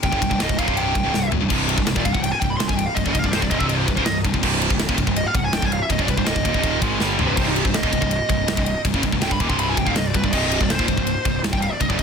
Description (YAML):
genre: heavy metal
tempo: 163 BPM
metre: 4/4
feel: straight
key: C minor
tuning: A4 = 440 Hz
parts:
  - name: smooth overdriven lead guitar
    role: melody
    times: 0.0-12.0 s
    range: Eb4 to D6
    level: -25 LUFS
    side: right 1 dB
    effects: ping-pong delay
  - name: heavy high-gain guitar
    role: riff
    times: 0.0-12.0 s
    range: C2 to Ab3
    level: -26 LUFS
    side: left 14 dB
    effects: distortion
  - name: tight distorted guitar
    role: riff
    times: 0.0-12.0 s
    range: C2 to Ab3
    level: -26 LUFS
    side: right 14 dB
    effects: distortion
  - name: fuzz picked electric bass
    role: bass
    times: 0.0-12.0 s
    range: C1 to Ab1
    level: -26 LUFS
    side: equal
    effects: overdrive
  - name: tight metal drum kit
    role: drums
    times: 0.0-12.0 s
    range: crash cymbal, kick drum, ride cymbal, snare drum, toms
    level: -23 LUFS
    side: equal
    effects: none
  - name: thick fuzz guitar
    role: riff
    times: 1.5-12.0 s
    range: C2 to Ab3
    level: -28 LUFS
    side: right 1 dB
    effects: none
room: little or no reverb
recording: dense, heavily limited modern master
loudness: -18 LUFS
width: side -6 dB against mid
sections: 0.0-12.0 A section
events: lead electric guitar solo 0.0-12.0; drum fill 1.1-1.5, 7.0-7.4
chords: 0.0 Cm